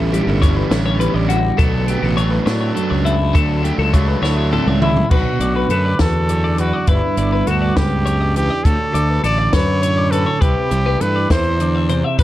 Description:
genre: math rock and midwest emo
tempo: 68 BPM (dotted quarters)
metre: 6/8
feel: straight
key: D major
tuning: A4 = 444 Hz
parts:
  - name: twelve-string electric guitar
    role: accompaniment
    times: 0.0-12.2 s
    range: D2 to F#4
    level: -23 LUFS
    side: right 5 dB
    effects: none
  - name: twelve-string electric guitar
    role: arpeggios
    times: 0.0-12.2 s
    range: E4 to E5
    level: -23 LUFS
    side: left 6 dB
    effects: none
  - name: overdriven electric guitar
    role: riff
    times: 0.0-4.9 s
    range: B2 to E4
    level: -22 LUFS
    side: right 2 dB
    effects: none
  - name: fuzz fingered electric bass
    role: bass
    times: 0.0-12.2 s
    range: G1 to A2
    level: -18 LUFS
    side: equal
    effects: overdrive
  - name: compact cocktail drum kit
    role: drums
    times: 0.1-12.2 s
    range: crash cymbal, hi-hat, kick drum, snare drum, toms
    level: -18 LUFS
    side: equal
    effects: none
  - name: brilliant trumpet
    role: melody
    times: 4.8-12.2 s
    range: E4 to D5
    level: -21 LUFS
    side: right 1 dB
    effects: none
room: little or no reverb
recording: dark, warm production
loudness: -14 LUFS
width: side -14 dB against mid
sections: 0.0-5.1 A section; 5.1-12.2 B section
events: drum fill 4.2-5.1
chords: 0.0 A9sus4; 1.6 Bm9; 3.3 Dmaj7; 5.1 Bm7; 6.9 G6; 8.6 Dmaj7; 10.4 C6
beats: 0.72 | 1.59 2.47 | 3.35 4.23 | 5.11 5.99 | 6.88 7.76 | 8.65 9.53 | 10.42 11.30 | 12.19

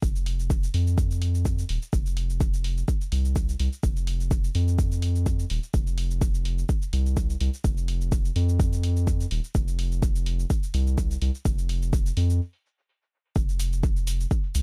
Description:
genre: dub techno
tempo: 126 BPM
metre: 4/4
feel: swing 55% on 16ths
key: unclear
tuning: A4 = 441 Hz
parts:
  - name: soft dub sub bass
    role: bass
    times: 0.0-14.6 s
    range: Eb1 to F2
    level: -27 LUFS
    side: equal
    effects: sidechain pumping
  - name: electronic cabasa and hi-hat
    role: drums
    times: 0.0-14.6 s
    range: none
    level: -41 LUFS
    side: equal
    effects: none
  - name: electronic kick drum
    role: drums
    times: 0.0-14.4 s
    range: none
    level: -27 LUFS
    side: equal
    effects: none
room: little or no reverb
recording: echo-heavy mix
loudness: -26 LUFS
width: mono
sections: 0.0-13.4 A section; 13.4-14.6 A section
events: stop 12.4-13.4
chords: none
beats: | 0.03 0.50 0.98 1.45 | 1.93 2.41 2.88 3.36 | 3.83 4.31 4.79 5.26 | 5.74 6.22 6.69 7.17 | 7.64 8.12 8.60 9.07 | 9.55 10.03 10.50 10.98 | 11.45 11.93 12.41 12.88 | 13.36 13.84 14.31

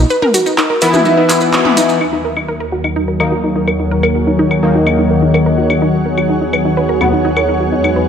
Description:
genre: melodic techno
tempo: 126 BPM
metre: 4/4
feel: straight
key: Eb phrygian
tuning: A4 = 444 Hz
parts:
  - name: wide unison pluck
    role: arpeggios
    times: 0.0-8.0 s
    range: Eb4 to B4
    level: -17 LUFS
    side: right 1 dB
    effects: tape echo
  - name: maracas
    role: percussion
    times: 0.1-2.0 s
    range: none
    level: -24 LUFS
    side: right 2 dB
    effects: none
  - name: deep house drum kit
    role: drums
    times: 0.2-7.9 s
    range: claves, handclaps, hi-hat, toms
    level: -18 LUFS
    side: left 1 dB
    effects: overdrive, low-pass filter on hats, low-pass filter on toms, low-pass filter on snare, low-pass filter on perc
  - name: sync-sweep polysynth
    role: stabs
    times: 0.8-7.1 s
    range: D#2 to E4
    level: -15 LUFS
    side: left 2 dB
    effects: lush chorus, tape echo
  - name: warm analog pad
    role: sustained chords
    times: 2.0-8.1 s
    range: Eb2 to B4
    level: -16 LUFS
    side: left 1 dB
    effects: chorus
  - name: analog drone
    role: drone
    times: 2.6-8.1 s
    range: Gb3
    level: -23 LUFS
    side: right 2 dB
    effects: none
  - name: ethereal airy pad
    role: texture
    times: 3.5-8.1 s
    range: Eb4 to Gb5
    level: -20 LUFS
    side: right 2 dB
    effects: ensemble chorus, built-in reverb
room: wet lush hall reverb, RT60 2.1 s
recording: dreamy mix soaked in reverb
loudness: -11 LUFS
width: side -7 dB against mid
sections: 0.0-2.0 A section; 2.0-8.1 B section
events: band accent 1.5; filter sweep on synth arpeggio sound 2.0-8.1; filter sweep on analog polysynth 2.0-8.1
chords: 0.1 E5; 2.0 Ebm; 5.8 B/D#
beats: | 0.10 0.58 1.06 1.53 | 2.01 2.48 2.96 3.44 | 3.91 4.39 4.87 5.34 | 5.82 6.29 6.77 7.25 | 7.72

